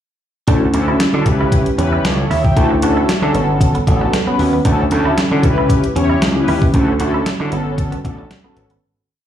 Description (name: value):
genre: early-eighties boogie funk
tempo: 115 BPM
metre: 4/4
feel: straight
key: D major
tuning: A4 = 440 Hz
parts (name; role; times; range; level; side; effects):
- mellow synth brass; accompaniment; 0.5-8.7 s; B3 to G5; -17 LUFS; left 1 dB; chorus, phaser, slapback echo
- clean electric guitar; riff; 0.5-8.8 s; B3 to F#4; -24 LUFS; right 5 dB; analog chorus, slapback echo
- gritty slap bass; bass; 0.5-8.8 s; G1 to D3; -17 LUFS; equal; overdrive
- clean 12-bit digital drum machine; drums; 0.5-8.8 s; hi-hat, kick drum, snare drum; -18 LUFS; equal; overdrive
room: light reverb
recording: live gig heard through the venue's PA, club reverb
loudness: -13 LUFS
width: side -10 dB against mid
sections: 0.5-8.8 verse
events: fade-out 6.7-8.8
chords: 0.5 Dmaj7; 1.3 C#m9b5; 2.6 Dmaj7; 3.3 Gmaj9#11; 4.7 Dmaj7; 5.4 C#m9b5; 6.7 Dmaj7; 7.5 Gmaj9#11